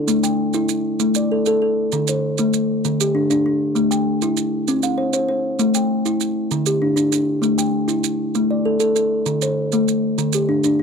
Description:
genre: southern african traditional, mbira-style interlocking cycle.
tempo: 131 BPM (dotted quarters).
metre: 12/8.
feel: straight.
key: A equiheptatonic.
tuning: A4 = 439 Hz.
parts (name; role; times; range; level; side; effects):
kalimba; arpeggios; 0.0-10.8 s; D3 to G5+29c; -17 LUFS; left 1 dB; none.
maracas; percussion; 0.1-10.8 s; none; -25 LUFS; right 17 dB; none.
room: small room ambience.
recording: dry, close 1970s-style studio recording.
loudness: -17 LUFS.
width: side -5 dB against mid.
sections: 0.1-10.8 A section.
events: none.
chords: 0.1 A5; 1.9 D5; 3.8 A5; 4.7 N.C.; 5.6 Am; 6.5 Dsus4; 7.4 A5; 9.3 D5.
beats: | 0.08 0.54 1.00 1.46 | 1.92 2.38 2.84 3.30 | 3.76 4.22 4.68 5.14 | 5.59 6.05 6.51 6.97 | 7.43 7.89 8.35 8.80 | 9.26 9.72 10.18 10.64.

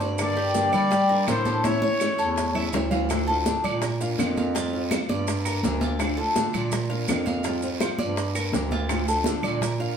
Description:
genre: latin, Cuban son and guajira.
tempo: 166 BPM.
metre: 4/4.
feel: straight.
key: D minor.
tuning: A4 = 441 Hz.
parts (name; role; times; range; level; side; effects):
flamenco guitar; accompaniment; 0.0-10.0 s; D3 to G4; -29 LUFS; left 3 dB; none.
Cuban tres; arpeggios; 0.0-10.0 s; E4 to F5; -28 LUFS; equal; none.
warm bass clarinet; bass; 0.0-9.9 s; D2 to G3; -28 LUFS; right 2 dB; none.
bongos; percussion; 0.0-10.0 s; none; -32 LUFS; left 1 dB; none.
guiro; percussion; 0.0-10.0 s; none; -38 LUFS; right 5 dB; none.
maracas; percussion; 0.0-9.8 s; none; -38 LUFS; right 6 dB; none.
breathy trumpet; melody; 0.2-2.7 s; C5 to D5; -27 LUFS; left 1 dB; none.
claves; percussion; 0.2-9.6 s; none; -35 LUFS; right 4 dB; none.
congas; percussion; 0.2-10.0 s; none; -31 LUFS; right 1 dB; none.
room: wet studio reverb, RT60 0.7 s.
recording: band playing live in one room.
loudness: -22 LUFS.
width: side -7 dB against mid.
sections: 0.0-3.1 A section; 3.1-10.0 B section.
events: drum fill 1.6-3.1.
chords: 0.2 Gm; 1.6 A; 3.1 Dm; 3.8 Bb; 4.5 Fsus2; 5.3 Gm; 6.0 Dm; 6.7 Bb; 7.4 Fsus2; 8.2 Gm; 8.9 Dm.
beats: | 0.20 0.56 0.92 1.28 | 1.65 2.01 2.37 2.74 | 3.10 3.46 3.83 4.19 | 4.55 4.91 5.27 5.64 | 6.00 6.36 6.72 7.08 | 7.45 7.81 8.17 8.53 | 8.90 9.26 9.62.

